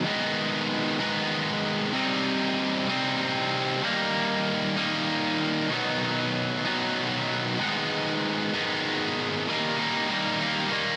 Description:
rock; 64 BPM (dotted quarters); 6/8; straight; A4 = 440 Hz
high-gain distorted guitar; solo; 0.0-11.0 s; Ab2 to Eb4; -26 LUFS; equal; distortion
moderate large studio reverb, RT60 1.0 s, digital ambience; -26 LUFS; mono
0.0-9.5 A section; 9.5-11.0 B section
0.1 Abm; 1.9 Cm; 3.8 Eb; 5.7 B; 7.6 Abm; 9.5 Eb
| 0.05 1.00 | 1.95 2.89 | 3.84 4.78 | 5.72 6.66 | 7.60 8.54 | 9.47 10.41

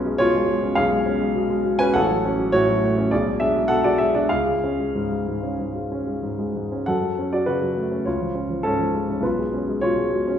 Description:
classical, romantic character piece for solo piano; 92-105 BPM; 4/4; rubato; A4 = 440 Hz
warm grand piano; solo; 0.0-10.4 s; A1 to G#5; -19 LUFS; equal
wet recital hall reverb, RT60 1.5 s; heard from further back in the room; -19 LUFS; side -9 dB against mid
0.0-10.4 A section
0.0 C#7/B; 2.0 F#m/A; 3.1 G#dim/B; 4.3 C#; 6.9 F#m; 8.1 C#; 9.2 C#7/B
0.20 0.79 1.36 | 1.95 2.54 3.11 3.70 | 4.30 4.94 5.59 6.23 | 6.87 7.47 8.06 8.65 | 9.24 9.83

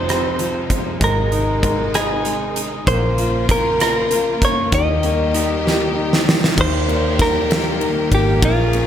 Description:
six-eight pop ballad; 65 BPM (dotted quarters); 6/8; straight; A4 = 437 Hz
direct-recorded clean electric guitar; melody; 0.0-8.9 s; F4 to Eb5; -21 LUFS; equal; wide subtle chorus, digital delay
clear concert grand piano; accompaniment; 0.0-8.9 s; Eb3 to G4; -23 LUFS; left 2 dB
clear studio string section; sustained chords; 0.0-8.9 s; C3 to Ab4; -25 LUFS; left 2 dB
vintage muted fingered electric bass; bass; 0.0-8.9 s; F1 to Eb2; -23 LUFS; equal
huge arena drum kit; drums; 0.1-8.9 s; crash cymbal, hi-hat, kick drum, ride cymbal, rim click, snare drum; -20 LUFS; right 1 dB; gated reverb
moderate plate reverb, RT60 1.9 s, small room ambience; bright 1980s-style digital production; -15 LUFS; side -9 dB against mid
0.0-6.6 A section; 6.6-8.9 B section
drum fill 5.7-6.6
0.0 Fm7; 1.0 Ab; 2.9 Bbm; 4.7 Eb
0.09 | 1.02 1.95 | 2.87 3.80 | 4.72 5.65 | 6.58 7.50 | 8.43

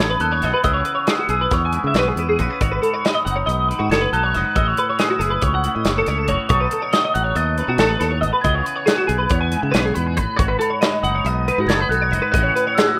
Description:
math rock and midwest emo; 277 BPM (eighths); 9/8; straight; A4 = 445 Hz
glockenspiel with rubber mallets; melody; 0.0-13.0 s; B5 to A6; -25 LUFS; equal; slapback echo
twangy electric guitar; accompaniment; 0.0-13.0 s; F#2 to A4; -32 LUFS; equal
twelve-string electric guitar; arpeggios; 0.0-13.0 s; F#4 to G#5; -23 LUFS; equal; ensemble chorus
modern bright fingered electric bass; bass; 0.0-12.5 s; F#1 to C#3; -25 LUFS; equal
modern studio drum kit; drums; 0.0-12.9 s; hi-hat, kick drum, snare drum; -24 LUFS; equal
light reverb; rough home demo mix; -19 LUFS; mono
0.0-13.0 A section
0.0 B7; 0.6 C#m7; 2.6 G#m7; 4.6 A6; 6.5 B7; 8.4 C#m7; 10.4 G#m7; 12.3 A69
0.00 0.22 0.43 | 0.65 0.87 1.08 1.30 1.52 1.73 1.95 2.17 2.38 | 2.60 2.82 3.04 3.25 3.47 3.69 3.90 4.12 4.34 | 4.55 4.77 4.99 5.20 5.42 5.64 5.85 6.07 6.29 | 6.50 6.72 6.93 7.15 7.37 7.58 7.80 8.01 8.23 | 8.44 8.66 8.88 9.09 9.31 9.52 9.74 9.95 10.17 | 10.39 10.60 10.82 11.03 11.25 11.46 11.68 11.90 12.11 | 12.33 12.55 12.76 12.98

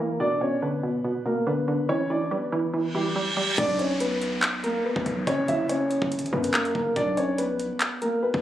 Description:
hip hop, drill; 142 BPM; 4/4; half-time; B harmonic minor; A4 = 439 Hz
dark concert grand piano; melody; 0.0-8.4 s; G3 to E5; -25 LUFS; equal; low-pass filter
hollow square pluck; accompaniment; 0.0-3.6 s; F#2 to G3; -27 LUFS; right 2 dB; chorus, low-pass filter
reverse cymbal and downlifter; sound effects; 2.9-7.0 s; -32 LUFS; right 2 dB
hard-hitting 808-style bass; bass; 3.6-8.4 s; F#1 to F#2; -31 LUFS; equal
drill drum kit; drums; 3.6-8.4 s; crash cymbal, handclaps, hi-hat, kick drum; -28 LUFS; equal
moderate lush hall reverb, RT60 1.8 s, digital ambience; recorded on a phone in the room, club reverb, compression; -23 LUFS; side -12 dB against mid
0.0-3.6 A section; 3.6-8.4 B section
filter sweep 0.0-3.6; reverse cymbal 2.9-3.6
0.2 Bm; 1.9 Em7; 3.6 Bm; 5.3 F#7; 7.0 Bm
| 0.20 0.62 1.05 1.47 | 1.89 2.31 2.74 3.16 | 3.58 4.00 4.43 4.85 | 5.27 5.69 6.12 6.54 | 6.96 7.38 7.81 8.23

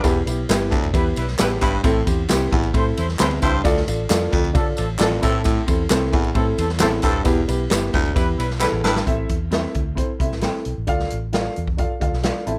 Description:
uptempo 1960s-style soul; 133 BPM; 4/4; straight; A minor; A4 = 440 Hz
mellow horn section; second line; 0.0-9.0 s; E3 to C5; -27 LUFS; equal
warm upright piano; accompaniment; 0.0-12.6 s; B3 to A5; -26 LUFS; equal
growling baritone saxophone; riff; 0.0-9.0 s; D2 to A2; -27 LUFS; equal
vintage muted fingered electric bass; bass; 0.0-12.6 s; D#1 to D3; -27 LUFS; equal
swinging big-band drum kit; drums; 0.0-12.6 s; hi-hat, kick drum, ride cymbal, snare drum; -24 LUFS; equal
tambourine and handclaps; percussion; 0.0-8.9 s; -32 LUFS; equal
little or no reverb; -20 LUFS; mono
0.0-9.1 A section; 9.1-12.6 B section
drum fill 8.6-9.1; upright piano fill 11.8-12.6
0.0 Em; 1.8 Am; 3.7 Dm; 5.2 Am; 7.3 Em; 9.1 Am; 10.9 Dm
| 0.04 0.49 0.94 1.39 | 1.84 2.30 2.75 3.20 | 3.65 4.10 4.55 5.00 | 5.46 5.91 6.36 6.81 | 7.26 7.71 8.16 8.62 | 9.07 9.52 9.98 10.43 | 10.88 11.34 11.79 12.25

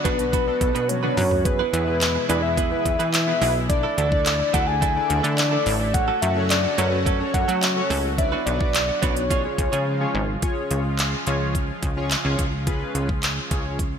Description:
dance-pop; 107 BPM; 4/4; straight; A4 = 440 Hz
soft octave-layered synth lead; melody; 0.0-10.1 s; B4 to G#5; -24 LUFS; left 1 dB; chorus, digital delay
lush unison pad; sustained chords; 0.0-14.0 s; B2 to F#4; -31 LUFS; equal; chorus, sidechain pumping
direct-recorded clean electric guitar; riff; 0.0-9.9 s; A3 to C#5; -30 LUFS; right 8 dB; wide subtle chorus
chorused polysynth; accompaniment; 0.1-13.8 s; B3 to D5; -30 LUFS; left 1 dB; sidechain pumping
plucky analog bass; bass; 0.1-14.0 s; G#1 to F#3; -25 LUFS; equal; sidechain pumping
pop drum kit; drums; 0.1-13.9 s; handclaps, hi-hat, kick drum, toms; -24 LUFS; equal
moderate lush hall reverb, RT60 2.1 s; bright 1980s-style digital production; -19 LUFS; side -7 dB against mid
0.0-10.4 A section; 10.4-14.0 B section
drum fill 0.9-1.5; silent gap 9.9-10.4
0.0 Bm; 1.5 E; 3.7 Dsus2; 5.9 F#m; 8.2 Bm; 9.3 C#
0.33 0.89 | 1.45 2.02 2.58 3.14 | 3.70 4.26 4.82 5.38 | 5.94 6.50 7.06 7.62 | 8.18 8.74 9.30 9.87 | 10.43 10.99 11.55 12.11 | 12.67 13.23 13.79

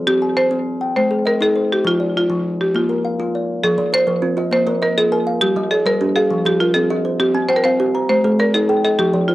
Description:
southern african traditional, mbira-style interlocking cycle; 134 BPM (dotted quarters); 12/8; straight; F equiheptatonic; A4 = 441 Hz
kalimba; arpeggios; 0.0-9.3 s; F3 to Bb5; -20 LUFS; left 2 dB
buzzing marimba with hard mallets; melody; 0.1-9.3 s; F4 to C5; -17 LUFS; equal; cassette tape
kalimba; arpeggios; 3.8-9.3 s; F3 to G5-29c; -21 LUFS; right 3 dB
light reverb; home recording on cassette; -15 LUFS; side -16 dB against mid
0.0-3.6 A section; 3.6-9.3 A section
0.1 C5; 1.0 Ab; 1.8 F5; 2.7 Bb; 3.6 Fm; 4.5 Bb; 5.4 Gm; 6.3 Fm; 7.2 Cm; 8.1 Ab
| 0.07 0.51 0.96 1.40 | 1.85 2.29 2.74 3.19 | 3.63 4.08 4.52 4.97 | 5.42 5.86 6.31 6.75 | 7.20 7.64 8.09 8.54 | 8.98

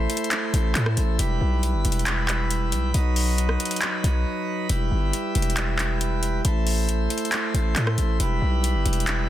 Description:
hip hop, trap; 137 BPM; 4/4; half-time; E harmonic minor; A4 = 441 Hz
pipe organ, plenum; sustained chords; 0.0-9.3 s; F#3 to C5; -27 LUFS; right 2 dB
distorted 808-style bass; bass; 0.0-9.3 s; E1 to A2; -23 LUFS; equal; distortion
booming analog drum machine; drums; 0.1-9.2 s; handclaps, hi-hat, rim click; -27 LUFS; left 1 dB
digital ambience; dense, heavily limited modern master; -21 LUFS; side -13 dB against mid
0.0-9.3 A section
break 4.3-4.7
0.0 Am; 1.2 Em; 2.9 B; 4.7 Em; 6.4 Am; 8.2 Em
0.32 0.75 | 1.19 1.63 2.07 2.50 | 2.94 3.38 3.82 4.26 | 4.70 5.13 5.57 6.01 | 6.45 6.88 7.32 7.76 | 8.20 8.64 9.07

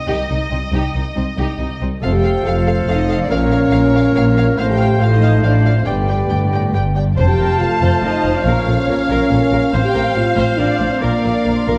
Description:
cinematic; 140 BPM; 3/4; straight; F mixolydian; A4 = 440 Hz
warm studio violin section; melody; 0.0-11.8 s; Eb5 to A5; -29 LUFS; equal
warm studio violin section; second line; 0.1-11.8 s; C4 to G5; -30 LUFS; equal
warm studio viola section; accompaniment; 0.1-11.8 s; Eb4 to F5; -28 LUFS; equal
dark symphonic cello section; bass; 0.1-11.8 s; C2 to Bb2; -24 LUFS; equal
rich symphonic double bass section; bass; 0.1-11.8 s; F1 to C2; -21 LUFS; equal
clear oboe; second line; 2.0-11.8 s; A4 to D5; -29 LUFS; equal
mellow clarinet; second line; 2.0-11.8 s; F4 to D5; -27 LUFS; equal
silver concert flute; second line; 2.0-11.8 s; F5 to C6; -28 LUFS; equal
dark French horn section; sustained chords; 2.0-11.8 s; Bb3 to G4; -21 LUFS; equal
dark trombone section; sustained chords; 2.0-11.8 s; D3 to D4; -28 LUFS; equal
timpani; percussion; 7.2-7.8 s; F2; -22 LUFS; equal
wet scoring stage reverb, RT60 1.8 s; dark, warm production; -16 LUFS; mono
0.0-2.0 A section; 2.0-11.8 B section
build-up 0.0-2.0
0.0 Cm; 2.0 F; 3.3 Bbm; 4.6 F/A; 5.9 G; 7.2 F; 8.5 Bbm; 9.7 F/A; 11.0 Bb
0.30 | 0.73 1.17 1.60 | 2.03 2.46 2.89 | 3.31 3.74 4.16 | 4.59 5.02 5.45 | 5.88 6.31 6.74 | 7.18 7.61 8.03 | 8.46 8.89 9.31 | 9.74 10.16 10.59 | 11.02 11.46

